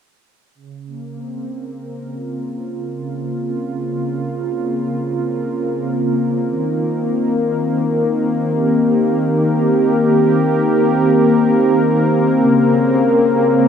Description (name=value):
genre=ambient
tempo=free time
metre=none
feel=none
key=Bb dorian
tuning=A4 = 440 Hz
part: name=warm analog pad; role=sustained chords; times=0.5-13.7 s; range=Db3 to Bb4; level=-15 LUFS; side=equal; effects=chorus, tremolo
room=moderate plate reverb, RT60 3.6 s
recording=none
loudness=-14 LUFS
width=side -8 dB against mid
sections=0.6-13.7 A section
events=fade-in on analog synth pad 0.6-13.7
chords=0.6 Bbmadd9; 6.5 Cm7; 12.4 Bbmadd9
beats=free time